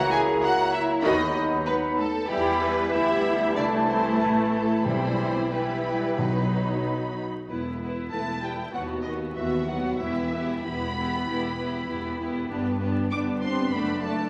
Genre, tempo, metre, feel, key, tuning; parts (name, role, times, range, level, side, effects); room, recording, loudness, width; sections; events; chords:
quick classical-period movement for symphony orchestra; 94 BPM; 4/4; uneven beats, rubato; E minor; A4 = 443 Hz
rich studio violin section; melody; 0.0-14.3 s; D#5 to D6; -38 LUFS; equal
flute section; second line; 0.0-7.2 s; G5 to B5; -32 LUFS; equal
mellow clarinet; second line; 0.0-7.1 s; D#4 to G4; -37 LUFS; equal
warm studio violin section; second line; 0.0-14.3 s; G4 to G#5; -34 LUFS; equal
rich studio viola section; accompaniment; 0.0-14.3 s; D#3 to F#4; -30 LUFS; equal
warm bassoon; accompaniment; 0.0-7.2 s; E3 to F#3; -36 LUFS; equal
dark French horn section; sustained chords; 0.0-14.1 s; D#3 to G4; -35 LUFS; equal
bright studio double bass section; bass; 0.0-14.3 s; E1 to E2; -38 LUFS; equal
warm studio cello section; bass; 0.0-14.3 s; D#2 to G#4; -37 LUFS; equal
timpani; percussion; 4.9-7.1 s; B2; -32 LUFS; equal
wet scoring stage reverb, RT60 2.0 s; vinyl crackle; -26 LUFS; mono
0.0-7.5 A section; 7.5-14.3 B section
0.0 F#7/C#; 1.0 B/D#; 2.3 Em; 3.6 Am/C; 4.9 Em/B; 6.2 B; 7.5 E5; 8.7 B/D#; 10.0 Em; 12.5 G; 13.7 D/F#